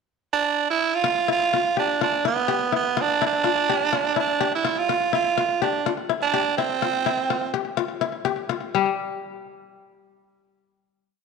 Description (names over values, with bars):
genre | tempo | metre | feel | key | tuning
afrobeat | 124 BPM | 4/4 | straight | unclear | A4 = 439 Hz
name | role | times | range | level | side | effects
raspy tenor saxophone | melody | 0.3-7.5 s | B3 to F4 | -21 LUFS | right 6 dB | slapback echo
kora | arpeggios | 1.0-8.9 s | G3 to G4 | -25 LUFS | left 11 dB | slapback echo
room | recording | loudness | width
moderate echo chamber reverb, RT60 2.2 s | 1960s-style stereo with parts hard left and right | -20 LUFS | side -5 dB against mid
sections
0.0-1.0 pickup bar; 1.0-8.7 groove; 8.7-10.7 final note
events
none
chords
0.0 N.C.; 1.0 Cadd11 (rootless); 8.7 N.C.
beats
0.07 0.56 | 1.04 1.52 2.00 2.49 | 2.97 3.45 3.93 4.41 | 4.89 5.38 5.86 6.34 | 6.82 7.30 7.78 8.26 | 8.75